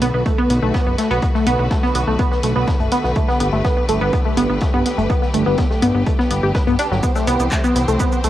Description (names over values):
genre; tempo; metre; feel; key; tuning
melodic techno; 124 BPM; 4/4; straight; unclear; A4 = 439 Hz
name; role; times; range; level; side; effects
rich symphonic string section; sustained chords; 0.0-8.3 s; D3 to C5; -26 LUFS; left 1 dB; vintage 12-bit sampler grit, sidechain pumping, cassette tape
tight sequenced synth; arpeggios; 0.0-8.3 s; F#3 to B4; -18 LUFS; equal; chorus, phaser, sidechain pumping, cassette tape, tape echo
fat analog bass; bass; 0.0-8.3 s; F#1 to G2; -21 LUFS; equal; sidechain pumping
punchy analog drum machine; drums; 0.0-8.3 s; handclaps, hi-hat, shaker; -27 LUFS; left 1 dB; cassette tape
vintage drum kit; drums; 0.0-8.3 s; hi-hat, snare drum; -35 LUFS; equal; high-pass filter on hats, cassette tape, high-pass filter on snare, high-pass filter on room
electronic kick drum; drums; 0.3-8.1 s; none; -19 LUFS; equal; cassette tape
room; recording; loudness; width
light reverb; home recording on cassette; -15 LUFS; side -13 dB against mid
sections
0.0-8.3 A section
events
none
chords
0.0 Bm7; 3.2 Gadd9; 7.0 C